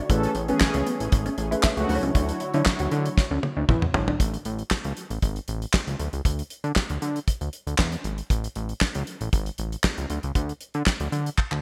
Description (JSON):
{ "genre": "early-eighties boogie funk", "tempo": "117 BPM", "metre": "4/4", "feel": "straight", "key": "A major", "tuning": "A4 = 440 Hz", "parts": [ { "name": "mellow tine electric piano", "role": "accompaniment", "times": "0.0-4.1 s", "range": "F#3 to D5", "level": "-32 LUFS", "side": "equal", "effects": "none" }, { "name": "warm analog pad", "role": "sustained chords", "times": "0.0-4.2 s", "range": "D3 to C#5", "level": "-37 LUFS", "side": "equal", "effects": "chorus" }, { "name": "mellow electric guitar", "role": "riff", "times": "0.0-4.2 s", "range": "A3 to F#4", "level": "-34 LUFS", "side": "equal", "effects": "ensemble chorus" }, { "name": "mellow synth brass", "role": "second line", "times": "0.1-2.0 s", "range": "C#3 to A4", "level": "-32 LUFS", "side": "equal", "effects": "chorus, delay" }, { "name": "fat analog bass", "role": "bass", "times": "0.1-11.6 s", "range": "G#1 to D3", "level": "-30 LUFS", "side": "equal", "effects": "none" }, { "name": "damped 70s drum kit", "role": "drums", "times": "0.1-11.6 s", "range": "handclaps, hi-hat, kick drum, snare drum, toms", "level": "-27 LUFS", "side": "equal", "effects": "gated reverb" } ], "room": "light reverb", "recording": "bright 1980s-style digital production", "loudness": "-25 LUFS", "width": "mono", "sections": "0.0-4.2 A section; 4.2-11.6 B section", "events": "drum fill 3.2-4.2, 11.4", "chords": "0.1 Amaj9; 1.9 Dmaj9; 4.2 Amaj7; 6.0 Dsus2; 8.3 Amaj7; 10.1 N.C.", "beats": "| 0.10 0.61 1.12 1.64 | 2.15 2.66 3.17 3.69 | 4.20 4.71 5.23 5.74 | 6.25 6.76 7.28 7.79 | 8.30 8.81 9.33 9.84 | 10.35 10.87 11.38" }